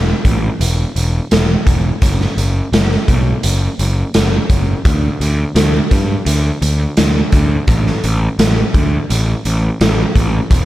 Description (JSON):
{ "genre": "rock, shoegaze and dream pop", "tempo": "85 BPM", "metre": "4/4", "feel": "straight", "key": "D major", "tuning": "A4 = 440 Hz", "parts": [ { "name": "fuzz picked electric bass", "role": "bass", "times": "0.0-10.7 s", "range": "E1 to G2", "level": "-15 LUFS", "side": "equal", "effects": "overdrive" }, { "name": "raw garage drum kit", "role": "drums", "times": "0.2-10.7 s", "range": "hi-hat, kick drum, snare drum", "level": "-15 LUFS", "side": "equal", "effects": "none" } ], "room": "light reverb", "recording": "none", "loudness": "-12 LUFS", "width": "side -15 dB against mid", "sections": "0.0-10.7 A section", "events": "none", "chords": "none", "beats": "0.61 1.31 | 2.02 2.73 3.44 4.14 | 4.85 5.56 6.27 6.98 | 7.68 8.39 9.10 9.80 | 10.51" }